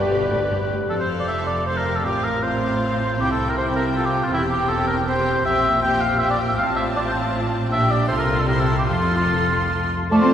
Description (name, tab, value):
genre	quick classical-period movement for symphony orchestra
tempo	143-163 BPM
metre	3/4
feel	rubato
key	F major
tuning	A4 = 440 Hz
part	rich studio violin section	melody	0.0-10.3 s	D5 to C6	-31 LUFS	left 3 dB	none
part	mellow clarinet	second line	0.0-0.7, 10.1-10.3 s	G4 to C5	-32 LUFS	left 2 dB	none
part	warm oboe	second line	0.0-10.3 s	E4 to G5	-22 LUFS	equal	none
part	warm studio violin section	second line	0.0-10.3 s	E4 to C5	-29 LUFS	left 2 dB	none
part	dark bassoon	accompaniment	0.0-0.5, 10.1-10.3 s	G3 to A3	-27 LUFS	left 1 dB	none
part	warm studio viola section	accompaniment	0.0-10.3 s	C4 to C5	-28 LUFS	right 2 dB	none
part	rich studio cello section	bass	0.0-10.3 s	E2 to C4	-25 LUFS	equal	none
part	rich studio double bass section	bass	0.0-10.3 s	E1 to F2	-27 LUFS	right 1 dB	none
part	concert flute	second line	10.1-10.3 s	A5 to C6	-22 LUFS	left 1 dB	none
part	dark French horn section	sustained chords	10.1-10.3 s	F4 to A4	-24 LUFS	left 3 dB	none
room	wet cathedral reverb, RT60 4.2 s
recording	recorded in a church or concert hall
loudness	-18 LUFS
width	side -9 dB against mid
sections	0.9-10.1 A section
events	none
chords	0.0 G; 0.9 F; 2.1 F/A; 3.2 C; 4.3 C/E; 5.5 C7/Bb; 6.6 F/A; 7.7 Gm/Bb; 8.1 F/C; 8.5 C; 8.9 F